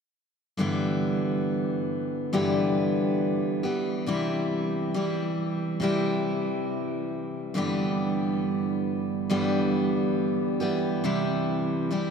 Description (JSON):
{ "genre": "folk", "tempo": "69 BPM", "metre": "4/4", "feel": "straight", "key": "G major", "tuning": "A4 = 440 Hz", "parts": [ { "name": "picked steel-string acoustic guitar", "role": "accompaniment", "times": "0.6-12.1 s", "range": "G2 to G4", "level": "-24 LUFS", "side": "equal", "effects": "none" } ], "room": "wet cathedral reverb, RT60 5.5 s", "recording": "in a vast, echoing space", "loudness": "-24 LUFS", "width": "side -6 dB against mid", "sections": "0.6-12.1 A section", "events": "none", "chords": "0.6 G6; 4.1 C; 7.6 G6; 11.0 C", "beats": "| 0.58 1.45 2.32 3.19 | 4.07 4.94 5.81 6.68 | 7.55 8.43 9.30 10.17 | 11.04 11.91" }